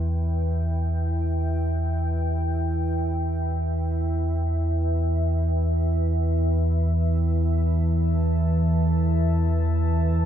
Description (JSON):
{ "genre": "dark ambient drone", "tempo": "free time", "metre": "none", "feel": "none", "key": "E minor", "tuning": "A4 = 440 Hz", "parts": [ { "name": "deep dark ambient pad", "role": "sustained chords", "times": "0.0-10.3 s", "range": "E4 to A5", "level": "-29 LUFS", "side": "equal", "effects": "chorus, built-in reverb" }, { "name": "dark detuned synth bell", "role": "arpeggios", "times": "0.0-10.3 s", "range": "E4", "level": "-59 LUFS", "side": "left 1 dB", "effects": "none" }, { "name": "deep rumbling drone", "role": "drone", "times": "0.0-10.3 s", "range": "E2 to E3", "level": "-22 LUFS", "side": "equal", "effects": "built-in reverb" } ], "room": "wet cathedral reverb, RT60 6.8 s", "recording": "in a vast, echoing space", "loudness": "-21 LUFS", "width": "side -10 dB against mid", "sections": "0.0-10.3 A section", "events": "fade-in on ambient pad 0.0-10.3", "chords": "0.0 Em" }